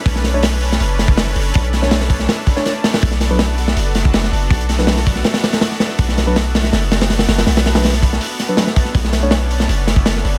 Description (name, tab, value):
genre	drum and bass, jungle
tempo	162 BPM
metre	4/4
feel	straight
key	unclear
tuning	A4 = 440 Hz
part	lush unison pad	sustained chords	0.0-10.4 s	B3 to B4	-27 LUFS	equal	chorus, vintage 12-bit sampler grit
part	long sustained 808-style bass	bass	0.1-10.4 s	F#1 to B1	-20 LUFS	equal	none
part	crunchy breakbeat drum kit	drums	0.1-10.3 s	hi-hat, kick drum, snare drum	-18 LUFS	equal	none
part	mellow tine electric piano	stabs	0.3-9.3 s	F#3 to C#5	-25 LUFS	equal	vintage 12-bit sampler grit, dub echo
room	studio reverb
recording	none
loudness	-16 LUFS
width	mono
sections	0.0-10.4 A section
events	none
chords	0.0 Bm9; 3.0 D6; 8.9 Bm9